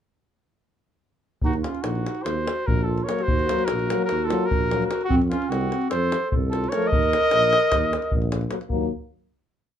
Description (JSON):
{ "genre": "balkan folk, Balkan brass band", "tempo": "298 BPM (eighths)", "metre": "9/8", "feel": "straight", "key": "Eb dorian sharp4", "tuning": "A4 = 440 Hz", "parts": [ { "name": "warm cornet", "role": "melody", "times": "1.4-8.3 s", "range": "F4 to Eb5", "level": "-24 LUFS", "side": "left 1 dB", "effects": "none" }, { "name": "mellow clarinet", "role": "second line", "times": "1.4-8.3 s", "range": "C4 to Bb4", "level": "-26 LUFS", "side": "right 2 dB", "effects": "none" }, { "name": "mellow tuba", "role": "bass", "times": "1.4-8.9 s", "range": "Bb1 to F2", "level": "-27 LUFS", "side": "equal", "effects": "none" }, { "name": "davul", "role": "percussion", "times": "1.4-8.9 s", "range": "none", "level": "-27 LUFS", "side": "left 1 dB", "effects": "none" }, { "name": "clear French horn", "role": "accompaniment", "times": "3.1-8.9 s", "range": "A3 to Bb3", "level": "-30 LUFS", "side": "left 8 dB", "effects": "none" }, { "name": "warm euphonium", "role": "accompaniment", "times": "3.1-8.9 s", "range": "F3 to Gb3", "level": "-31 LUFS", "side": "left 1 dB", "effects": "none" } ], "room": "moderate small room reverb, RT60 0.5 s", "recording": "minimal, uncompressed stereo recording", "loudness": "-20 LUFS", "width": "side -9 dB against mid", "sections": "1.4-8.7 A section; 8.7-9.8 final chord", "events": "none", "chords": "1.4 Ebm; 5.1 F; 6.9 Eb5; 8.7 Ebm" }